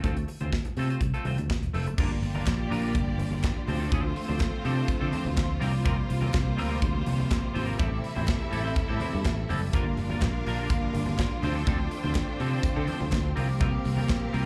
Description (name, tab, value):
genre	disco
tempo	124 BPM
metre	4/4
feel	straight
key	G dorian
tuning	A4 = 440 Hz
part	semi-hollow electric guitar	accompaniment	0.0-14.5 s	F3 to C5	-37 LUFS	equal	analog chorus, slapback echo
part	fingered electric bass	bass	0.0-14.5 s	E1 to D3	-31 LUFS	equal	none
part	modern studio drum kit	drums	0.0-14.5 s	crash cymbal, hi-hat, kick drum, snare drum	-32 LUFS	equal	none
part	congas	percussion	0.0-14.5 s	none	-40 LUFS	equal	none
part	bright studio string section	second line	2.0-14.5 s	G3 to G5	-40 LUFS	equal	tape echo, slapback echo
part	rich studio string section	sustained chords	2.0-14.5 s	C3 to G4	-36 LUFS	equal	none
part	group handclap	percussion	2.5-14.2 s	none	-45 LUFS	equal	none
room	light reverb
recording	live gig heard through the venue's PA, club ambience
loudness	-28 LUFS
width	mono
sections	0.0-2.0 A section; 2.0-14.5 B section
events	none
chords	0.0 Dm7; 2.0 Gm7; 3.7 Dm7; 5.6 C7sus4; 7.8 Am7; 9.7 Gm7; 11.4 Dm7; 13.4 C7sus4